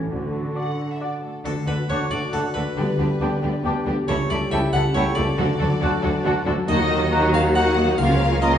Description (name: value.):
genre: cinematic, playful, whimsical film cue.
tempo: 138 BPM.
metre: 3/4.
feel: straight.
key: D major.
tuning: A4 = 440 Hz.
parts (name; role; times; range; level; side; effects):
mellow clarinet; second line; 0.0-8.6 s; D4 to F#4; -34 LUFS; left 2 dB; none.
mellow French horn section; sustained chords; 0.0-8.6 s; A3 to A4; -29 LUFS; left 2 dB; none.
concert harp; arpeggios; 0.0-8.6 s; A2 to A#5; -27 LUFS; left 2 dB; none.
clear studio double bass section; bass; 0.0-8.6 s; C#2 to D#2; -27 LUFS; right 1 dB; none.
rich studio cello section; bass; 0.0-8.6 s; C#3 to E3; -30 LUFS; right 2 dB; none.
warm tuba; bass; 0.0-8.6 s; C#2 to D#2; -28 LUFS; right 2 dB; none.
rich studio violin section; melody; 0.6-8.6 s; A4 to F#5; -30 LUFS; left 4 dB; none.
clear oboe; second line; 0.6-8.6 s; D5 to A#5; -33 LUFS; right 2 dB; none.
large flute ensemble; second line; 0.6-8.5 s; F#5 to D6; -30 LUFS; left 2 dB; none.
rich studio violin section; second line; 0.6-8.6 s; C#4 to C#5; -30 LUFS; left 1 dB; none.
rich studio viola section; accompaniment; 0.6-8.6 s; D#3 to F#4; -28 LUFS; right 1 dB; none.
harpsichord; melody; 1.5-8.6 s; A4 to F#5; -28 LUFS; equal; none.
room: wet recital hall reverb, RT60 1.4 s.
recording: recorded in a church or concert hall, nothing above 10.7 kHz.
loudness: -19 LUFS.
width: side -9 dB against mid.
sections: 0.0-1.5 A section; 1.5-8.6 B section.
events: none.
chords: 0.1 D; 2.8 G/D; 4.1 A7/C#; 5.4 D; 6.7 D#m; 8.0 A#m/C#.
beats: | 0.12 0.56 1.01 | 1.45 1.89 2.33 | 2.77 3.21 3.64 | 4.08 4.51 4.95 | 5.38 5.82 6.25 | 6.68 7.12 7.55 | 7.98 8.42.